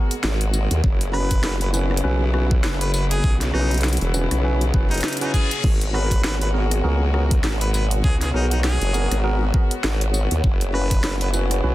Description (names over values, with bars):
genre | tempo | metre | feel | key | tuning
glitch hop | 100 BPM | 4/4 | swing 58% on 16ths | G# minor | A4 = 443 Hz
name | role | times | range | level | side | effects
bright chamber string section | sustained chords | 0.0-11.7 s | B2 to F#4 | -31 LUFS | left 1 dB | sidechain pumping
bright tine electric piano | stabs | 0.0-11.7 s | B3 to B4 | -28 LUFS | equal | medium stereo tremolo, vintage 12-bit sampler grit, sidechain pumping, digital delay
ethereal airy pad | texture | 0.0-11.7 s | G#4 to F#5 | -32 LUFS | right 1 dB | ensemble chorus, built-in reverb, sidechain pumping
drum and bass drum kit | drums | 0.1-11.6 s | crash cymbal, hi-hat, rim click, snare drum, tambourine | -27 LUFS | equal | overdrive
formant-sweep wobble bass | bass | 0.2-11.7 s | E1 to D#2 | -21 LUFS | equal | chorus
electronic kick drum | drums | 0.8-11.0 s | none | -19 LUFS | equal | overdrive
bright harmonica | melody | 1.1-11.3 s | D#4 to B4 | -29 LUFS | equal | vintage 12-bit sampler grit, digital delay
reverse cymbal | sound effects | 4.7-5.6 s | none | -32 LUFS | left 6 dB | none
room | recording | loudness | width
digital ambience | dense, heavily limited modern master | -18 LUFS | side -16 dB against mid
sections
0.0-11.7 A section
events
reverse cymbal 4.7-5.6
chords
0.0 G#m9; 0.8 F#7sus4; 5.6 G#m9; 10.4 F#7sus4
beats
0.24 | 0.84 1.44 2.04 2.64 | 3.24 3.84 4.44 5.04 | 5.64 6.24 6.84 7.44 | 8.04 8.64 9.24 9.84 | 10.44 11.04 11.64